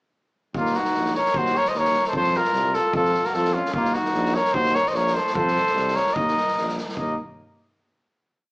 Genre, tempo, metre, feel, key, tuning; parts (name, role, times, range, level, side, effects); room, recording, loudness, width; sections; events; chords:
balkan folk, Balkan brass band; 149 BPM; 2/4; swing 56% on 16ths; Eb dorian sharp4; A4 = 440 Hz
warm tuba; bass; 0.5-7.2 s; Bb1 to F2; -28 LUFS; equal
street-band drum kit; percussion; 0.5-7.2 s; kick drum, snare drum; -31 LUFS; equal
warm trumpet; melody; 0.6-7.2 s; F4 to Eb5; -22 LUFS; equal
warm flugelhorn; second line; 0.6-7.2 s; Bb3 to C5; -26 LUFS; equal
moderate large studio reverb, RT60 0.9 s; band playing live in one room, small speaker sound; -20 LUFS; side -29 dB against mid
0.5-7.0 A section; 7.0-7.8 final chord
0.5 Ebm; 2.1 F5; 3.7 Ebm; 5.4 F; 6.2 Eb5